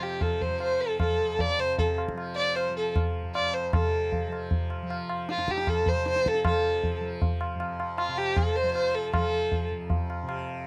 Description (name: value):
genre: indian classical, Hindustani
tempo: 155 BPM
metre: 7/4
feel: straight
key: F raga bhupali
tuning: A4 = 440 Hz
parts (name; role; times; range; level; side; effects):
- rich violin; melody; 0.0-9.7 s; F4 to D5; -29 LUFS; equal; none
- tanpura; drone; 0.0-10.7 s; F2 to F3; -39 LUFS; equal; none
- tabla; percussion; 0.2-10.4 s; none; -32 LUFS; equal; none
room: little or no reverb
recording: dry, close 1970s-style studio recording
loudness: -28 LUFS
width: mono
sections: 0.0-3.7 A section; 3.7-10.7 B section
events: speeding up 0.0-10.7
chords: none